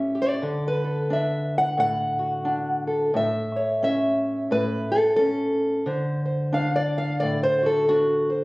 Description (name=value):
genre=acoustic country blues, solo or duo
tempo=88 BPM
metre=4/4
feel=swing 60% on 8ths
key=D major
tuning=A4 = 439 Hz
part: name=fingerpicked old ladder-braced acoustic guitar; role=solo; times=0.0-8.4 s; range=A2 to F#5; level=-21 LUFS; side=equal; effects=none
room=light reverb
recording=recorded on a phone in the room, studio reverb, compression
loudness=-21 LUFS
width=side -21 dB against mid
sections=0.0-5.9 A section; 5.9-8.4 B section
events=steel-string acoustic guitar solo 5.9-8.4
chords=0.4 D; 3.1 A; 5.9 D7